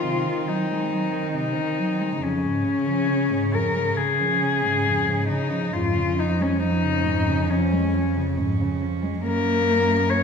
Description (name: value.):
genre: classical, lyrical piece for cello ensemble.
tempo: 68 BPM.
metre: 4/4.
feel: rubato.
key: Db major.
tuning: A4 = 440 Hz.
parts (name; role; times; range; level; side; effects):
warm cello; melody; 0.0-10.2 s; Db4 to Db5; -23 LUFS; left 6 dB; none.
warm cello; second line; 0.0-10.2 s; C4 to Db4; -30 LUFS; right 8 dB; none.
dark cello; accompaniment; 0.0-10.2 s; F2 to Bb3; -27 LUFS; equal; none.
warm cello; bass; 0.0-10.2 s; F2 to Eb3; -27 LUFS; right 2 dB; none.
room: wet recital hall reverb, RT60 1.2 s.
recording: heard from further back in the room.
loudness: -20 LUFS.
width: side -6 dB against mid.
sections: 0.0-10.2 A section.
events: none.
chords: 0.0 Ab7/C; 2.2 Db/F; 9.2 Ebm7/Gb (rootless).